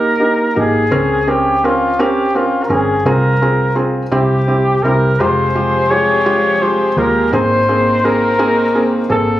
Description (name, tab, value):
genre	pop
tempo	56 BPM (dotted quarters)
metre	6/8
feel	straight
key	F minor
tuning	A4 = 443 Hz
part	clear flugelhorn	melody	0.0-9.4 s	F4 to Db5	-15 LUFS	equal	none
part	felt-muted upright piano	accompaniment	0.0-9.4 s	Ab3 to Bb4	-16 LUFS	right 1 dB	none
part	vintage muted fingered electric bass	bass	0.0-9.4 s	F1 to Eb2	-20 LUFS	equal	none
part	warm chamber string section	sustained chords	5.2-9.4 s	C3 to Ab4	-22 LUFS	left 3 dB	none
room	light reverb, small room ambience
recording	recorded on a phone in the room, club reverb, compression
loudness	-12 LUFS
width	side -14 dB against mid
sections	0.0-9.4 A section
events	none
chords	0.0 Eb; 0.9 Bbmadd9/Db; 3.1 Fm/C; 4.1 C; 5.2 Fmadd9; 7.3 Abadd9